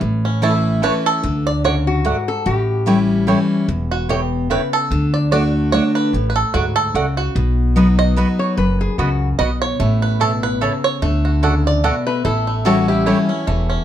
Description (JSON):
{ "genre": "bluegrass", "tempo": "147 BPM", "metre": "3/4", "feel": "swing 55% on 8ths", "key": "A major", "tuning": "A4 = 439 Hz", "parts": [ { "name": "picked steel-string acoustic guitar", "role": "accompaniment", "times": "0.0-13.8 s", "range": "E2 to F#4", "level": "-18 LUFS", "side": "left 1 dB", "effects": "none" }, { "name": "upright bass", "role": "bass", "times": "0.0-13.8 s", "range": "E1 to D2", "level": "-20 LUFS", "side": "equal", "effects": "none" }, { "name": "bluegrass banjo", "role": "melody", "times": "0.2-1.9, 3.9-13.8 s", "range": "A3 to D#5", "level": "-21 LUFS", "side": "right 3 dB", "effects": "none" }, { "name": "mandolin", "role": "stabs", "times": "0.4-13.2 s", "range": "A3 to B5", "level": "-23 LUFS", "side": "right 5 dB", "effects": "none" }, { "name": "lap resonator guitar", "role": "second line", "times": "1.9-3.2, 8.4-9.3, 12.1-13.8 s", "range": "E4 to C#5", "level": "-23 LUFS", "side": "left 4 dB", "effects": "none" } ], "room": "moderate studio reverb, RT60 0.7 s", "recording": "dark, warm production", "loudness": "-15 LUFS", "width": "side -10 dB against mid", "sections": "0.0-13.8 A section", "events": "five-string banjo solo 0.0-13.8", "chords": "0.0 A; 1.2 D; 2.5 A7; 4.9 D; 7.4 B; 9.8 A; 11.0 D; 12.2 A7" }